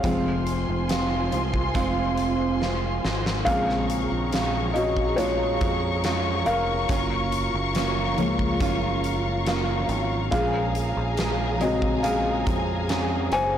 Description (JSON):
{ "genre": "pop ballad", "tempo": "70 BPM", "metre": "4/4", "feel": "straight", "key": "Bb minor", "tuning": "A4 = 440 Hz", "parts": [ { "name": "felt-muted upright piano", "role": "accompaniment", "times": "0.0-13.6 s", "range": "Db3 to Ab5", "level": "-27 LUFS", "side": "left 2 dB", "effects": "none" }, { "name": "dark studio string section", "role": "sustained chords", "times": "0.0-13.6 s", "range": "F4 to Db6", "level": "-29 LUFS", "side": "left 2 dB", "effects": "none" }, { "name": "nylon-string guitar", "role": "arpeggios", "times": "0.0-13.6 s", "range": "F2 to Ab4", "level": "-29 LUFS", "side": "right 7 dB", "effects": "none" }, { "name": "fingered electric bass", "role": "bass", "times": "0.0-13.6 s", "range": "F1 to F2", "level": "-29 LUFS", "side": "equal", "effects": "none" }, { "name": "huge arena drum kit", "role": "drums", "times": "0.0-13.5 s", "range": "hi-hat, kick drum, snare drum", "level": "-30 LUFS", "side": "equal", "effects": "none" } ], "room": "light reverb, small room reverb", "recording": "blown-out, overdriven recording, overdrive", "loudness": "-22 LUFS", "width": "side -10 dB against mid", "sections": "0.0-13.6 A section", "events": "felt piano solo 0.0-13.6; drum fill 2.6-3.5", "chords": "0.0 Fm; 3.5 Bbm7; 6.9 Gbmaj7; 10.3 Bbm7", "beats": "| 0.04 0.89 1.75 2.61 | 3.46 4.32 5.18 6.04 | 6.89 7.75 8.61 9.46 | 10.32 11.18 12.04 12.89" }